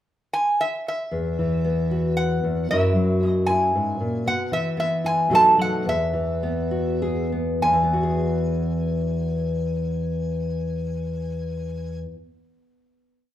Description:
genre	acoustic folk duo or small band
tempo	94-115 BPM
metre	3/4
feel	straight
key	E major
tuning	A4 = 440 Hz
part	metal-body resonator slide guitar	melody	0.3-12.0 s	E5 to A5	-21 LUFS	right 1 dB	none
part	nylon-string guitar	accompaniment	1.1-12.4 s	E2 to A#4	-23 LUFS	left 1 dB	none
room	wet large studio reverb, RT60 0.9 s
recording	band playing live in one room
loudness	-20 LUFS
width	side -12 dB against mid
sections	0.0-1.1 pickup bar; 1.1-7.6 A section; 7.6-11.4 final chord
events	slowing down 4.3-7.6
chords	0.0 N.C.; 1.1 Esus2; 2.7 F#7; 4.3 E5/B; 5.3 B7; 5.9 Eadd9

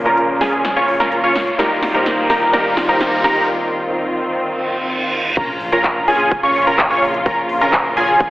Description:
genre	EDM, festival progressive house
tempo	127 BPM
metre	4/4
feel	straight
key	unclear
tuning	A4 = 440 Hz
part	warm grand piano	accompaniment	0.0-5.4 s	Bb2 to C5	-23 LUFS	left 1 dB	sidechain pumping, dub echo
part	dark studio string section	sustained chords	0.0-8.3 s	Db3 to F4	-22 LUFS	equal	sidechain pumping
part	riser, reverse cymbal and sub drop	sound effects	0.4-7.3 s	none	-26 LUFS	right 2 dB	none
part	plucky unison lead	arpeggios	0.1-8.3 s	Ab5 to Db6	-18 LUFS	equal	sidechain pumping, dub echo
part	supersaw stab	riff	0.1-8.3 s	Db4 to Db5	-19 LUFS	equal	wide subtle chorus, sidechain pumping, low-pass filter, dub echo
part	big-room dance drum kit	drums	0.1-8.3 s	crash cymbal, handclaps, hi-hat, snare drum	-22 LUFS	equal	overdrive, studio reverb
part	fat analog bass	bass	5.4-8.3 s	Bb1	-29 LUFS	equal	sidechain pumping
part	electronic kick drum	drums	5.4-8.3 s	none	-22 LUFS	equal	studio reverb
room	wet digital room reverb, RT60 1.1 s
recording	heavily compressed radio sound, telephone sound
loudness	-14 LUFS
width	side -17 dB against mid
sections	0.0-5.4 A section; 5.4-8.3 B section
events	build-up 0.0-5.4; drum fill 0.0-3.5; filter sweep on digital synth lead 0.0-5.4; break 3.5-5.4; reverse cymbal 4.6-5.4; drop 5.4-8.3; impact 5.4-7.3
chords	0.0 Bbm; 1.6 Eb; 5.4 Bbm

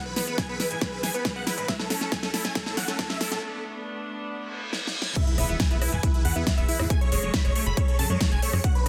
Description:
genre	uplifting trance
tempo	138 BPM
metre	4/4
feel	straight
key	unclear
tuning	A4 = 439 Hz
part	big supersaw lead	melody	0.0-8.9 s	E4 to B5	-34 LUFS	equal	phaser, cassette tape, sidechain pumping, digital delay
part	rich chamber string section	sustained chords	0.0-8.9 s	E3 to B4	-39 LUFS	equal	sidechain pumping
part	riser, reverse cymbal and impact	sound effects	0.1-6.9 s	none	-39 LUFS	equal	none
part	liquid acid bass	arpeggios	0.2-8.9 s	G#2 to E4	-38 LUFS	equal	lush chorus, sidechain pumping, digital delay
part	plucky analog bass	bass	0.2-8.9 s	E1 to A2	-32 LUFS	equal	sidechain pumping, high-pass filter
part	big-room dance drum kit	drums	0.2-8.9 s	crash cymbal, hi-hat, rim click, snare drum	-32 LUFS	equal	sidechain pumping on hats, sidechain pumping on cymbals
part	electronic kick drum	drums	0.4-8.7 s	none	-28 LUFS	equal	none
room	light reverb, digital ambience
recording	dense, heavily limited modern master, high-pass filter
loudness	-26 LUFS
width	mono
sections	0.0-5.2 A section; 5.2-8.9 B section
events	build-up 0.0-5.2; drum fill 0.0-3.4, 4.7-5.2; filter sweep 0.0-5.2; break 3.4-5.2; reverse cymbal 4.4-5.2; drop 5.2-8.9; impact 5.2-6.9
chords	0.0 E; 1.7 A; 3.4 Bm7; 5.2 E; 6.9 F#madd9

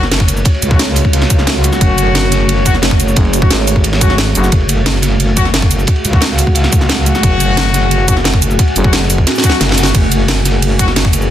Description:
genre	dark technical drum and bass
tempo	177 BPM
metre	4/4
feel	straight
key	F# minor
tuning	A4 = 440 Hz
part	deep dark ambient pad	sustained chords	0.0-11.3 s	A3 to F#5	-19 LUFS	right 1 dB	chorus, built-in reverb, sidechain pumping
part	warm brass ensemble	stabs	0.0-10.9 s	F#3 to F#4	-20 LUFS	left 4 dB	ping-pong delay
part	metallic wobble bass	bass	0.0-11.3 s	F#1 to C#2	-14 LUFS	equal	chorus
part	drum and bass drum kit	drums	0.0-11.3 s	hi-hat, ride cymbal, shaker, snare drum	-16 LUFS	right 1 dB	overdrive, studio ambience
part	crunchy breakbeat drum kit	drums	0.1-11.2 s	ride cymbal, snare drum	-22 LUFS	equal	high-pass filter on cymbals, studio ambience, high-pass filter on snare, high-pass filter on room
part	electronic kick drum	drums	0.2-11.1 s	none	-12 LUFS	equal	overdrive, studio ambience
part	growling FM bass	bass	3.2-4.5, 8.8-9.3 s	F#1 to G#1	-14 LUFS	equal	tube saturation
part	swell	sound effects	9.4-9.9 s	none	-26 LUFS	left 3 dB	none
room	little or no reverb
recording	dense, heavily limited modern master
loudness	-9 LUFS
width	side -11 dB against mid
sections	0.0-11.3 A section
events	drum fill 9.3-9.9; swell 9.4-9.9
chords	0.0 F#madd9

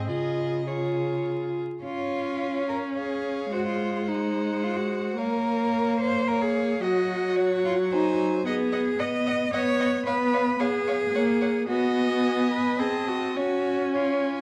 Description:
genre	quick classical-period movement for string quartet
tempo	100-114 BPM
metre	3/4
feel	rubato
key	Db major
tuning	A4 = 440 Hz
part	rich violin	melody	0.0-14.4 s	Db5 to A5	-40 LUFS	equal	none
part	warm violin	second line	0.0-14.4 s	Ab4 to Eb5	-35 LUFS	equal	none
part	rich viola	accompaniment	0.0-14.4 s	Gb3 to F4	-29 LUFS	equal	none
part	rich cello	bass	0.0-14.4 s	Db3 to D#5	-30 LUFS	equal	none
room	wet recital hall reverb, RT60 1.5 s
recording	vinyl crackle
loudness	-26 LUFS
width	mono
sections	0.0-1.8 A section; 1.8-14.4 B section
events	none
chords	0.1 Db; 3.5 Ab7; 5.2 Bbm; 6.8 Ebm/Gb; 7.9 Ab7/Gb; 8.5 G#m7/B; 10.1 C#7/B; 11.1 F#/A#; 11.7 G#m7/B; 12.8 Cdim7; 13.4 C#

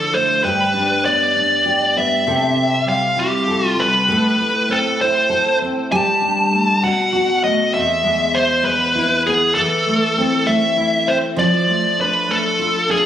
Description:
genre	pop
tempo	66 BPM (dotted quarters)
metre	6/8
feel	straight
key	unclear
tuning	A4 = 441 Hz
part	smooth overdriven lead guitar	melody	0.0-13.1 s	G4 to A5	-16 LUFS	equal	ping-pong delay
part	nylon-string guitar	accompaniment	0.0-13.1 s	E2 to A4	-20 LUFS	equal	double-tracked left and right
room	moderate concert hall reverb, RT60 2.0 s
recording	recorded on a phone in the room, compression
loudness	-14 LUFS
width	side -10 dB against mid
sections	0.4-7.7 A section; 7.7-13.1 B section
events	none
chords	0.4 G; 2.3 C6; 4.1 Am; 5.9 Gsus2; 6.8 B5; 7.7 E; 9.6 Am/E; 11.4 Dm/F

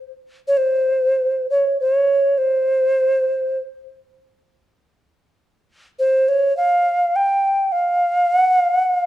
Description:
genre	japanese traditional, Japanese chamber music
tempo	50 BPM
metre	2/4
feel	rubato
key	unclear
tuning	A4 = 440 Hz
part	alto ocarina	solo	0.5-9.1 s	C5 to G5	-16 LUFS	equal	none
room	moderate recital hall reverb, RT60 1.3 s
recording	dark, warm production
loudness	-16 LUFS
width	side -13 dB against mid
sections	0.6-9.1 A section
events	none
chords	none

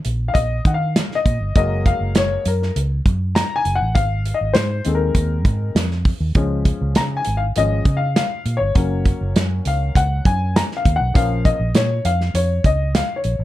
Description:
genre	uptempo 1960s-style soul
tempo	100 BPM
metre	4/4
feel	straight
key	unclear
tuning	A4 = 440 Hz
part	natural country drum kit	drums	0.0-13.4 s	hi-hat, kick drum, snare drum	-18 LUFS	right 1 dB	none
part	vintage muted fingered electric bass	bass	0.1-13.4 s	Gb1 to Eb3	-20 LUFS	equal	none
part	warm upright piano	accompaniment	0.3-13.4 s	Eb3 to Bb5	-22 LUFS	left 4 dB	plate reverb
room	little or no reverb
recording	dark, warm production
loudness	-16 LUFS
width	side -14 dB against mid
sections	0.0-13.4 A section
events	upright piano solo 0.0-13.4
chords	0.0 Eb5; 1.6 Gbadd9; 4.0 Ab; 6.4 Db; 8.8 Gb; 11.2 Bbm

